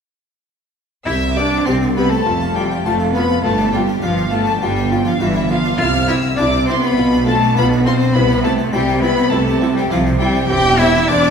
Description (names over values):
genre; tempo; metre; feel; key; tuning
classical, baroque-style concerto movement with solo episodes; 102 BPM; 4/4; straight; C major; A4 = 440 Hz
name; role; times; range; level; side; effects
rich cello; melody; 1.1-11.3 s; E3 to G4; -18 LUFS; equal; none
rich chamber violin section; melody; 1.1-11.3 s; E5 to G6; -22 LUFS; left 4 dB; none
warm chamber violin section; second line; 1.1-11.3 s; E4 to G5; -22 LUFS; left 3 dB; none
harpsichord; accompaniment; 1.1-11.3 s; C2 to C5; -25 LUFS; left 1 dB; none
rich chamber viola section; accompaniment; 1.1-11.2 s; C4 to G4; -26 LUFS; equal; none
clear studio double bass section; bass; 1.1-11.3 s; E1 to C2; -21 LUFS; right 2 dB; none
rich symphonic cello section; bass; 1.1-11.3 s; C2 to C3; -22 LUFS; right 2 dB; none
room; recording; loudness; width
wet recital hall reverb, RT60 1.5 s; heard from further back in the room; -13 LUFS; side -6 dB against mid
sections
1.1-11.3 A section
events
none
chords
1.1 C; 2.3 F5; 3.4 G7; 5.8 C; 7.0 G7/B; 8.1 C; 10.5 C/E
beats
| 1.06 1.66 2.26 2.85 | 3.44 4.03 4.62 5.21 | 5.80 6.38 6.97 7.56 | 8.15 8.73 9.32 9.91 | 10.50 11.09